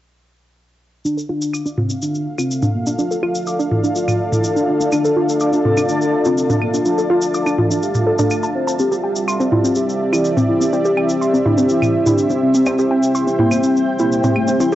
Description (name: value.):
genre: melodic techno.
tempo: 124 BPM.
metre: 4/4.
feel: straight.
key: D minor.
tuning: A4 = 445 Hz.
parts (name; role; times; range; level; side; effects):
soft octave-layered synth lead; melody; 1.1-14.8 s; A3 to C5; -21 LUFS; left 1 dB; chorus, phaser, cassette tape, tape echo.
dark analog pad; sustained chords; 2.3-14.8 s; C4 to F5; -21 LUFS; equal; chorus, cassette tape.
warbly dusty pluck; arpeggios; 1.1-14.8 s; C4 to D6; -20 LUFS; equal; chorus, cassette tape, analog delay.
egg shaker; percussion; 1.1-14.8 s; none; -30 LUFS; left 1 dB; none.
granular cloud pad; texture; 2.8-14.8 s; E4 to A5; -23 LUFS; equal; built-in reverb, cassette tape.
electronic claves and toms; drums; 1.5-14.5 s; none; -21 LUFS; equal; overdrive, low-pass filter on perc, cassette tape, low-pass filter on toms.
room: moderate digital room reverb, RT60 1.3 s.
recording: home recording on cassette, nothing above 7.9 kHz, faint mains hum.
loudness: -15 LUFS.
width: side -13 dB against mid.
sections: 1.1-14.8 A section.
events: filter sweep on synth arpeggio sound 1.1-14.8; filter sweep on soft synth lead 1.1-14.8.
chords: 1.1 Dm; 8.8 C.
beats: | 1.05 1.54 2.02 2.50 | 2.99 3.47 3.96 4.44 | 4.92 5.41 5.89 6.38 | 6.86 7.34 7.83 8.31 | 8.79 9.28 9.76 10.25 | 10.73 11.21 11.70 12.18 | 12.66 13.15 13.63 14.12 | 14.60.